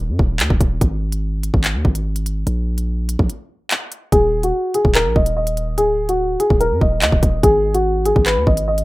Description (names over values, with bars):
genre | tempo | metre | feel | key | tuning
hip hop, drill | 145 BPM | 4/4 | half-time | unclear | A4 = 440 Hz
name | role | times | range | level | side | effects
distorted 808-style bass | bass | 0.0-8.8 s | D1 to Gb2 | -20 LUFS | equal | distortion
drill drum kit | drums | 0.2-8.8 s | handclaps, hi-hat, kick drum | -18 LUFS | equal | none
clear upright piano | melody | 4.1-8.8 s | Gb4 to Eb5 | -17 LUFS | equal | low-pass filter
room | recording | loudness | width
little or no reverb | rough home demo mix | -15 LUFS | side -19 dB against mid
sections
0.0-8.8 A section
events
break 0.0-4.1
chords
0.0 Ebm; 0.8 Ab5; 2.5 N.C.; 7.4 Ab5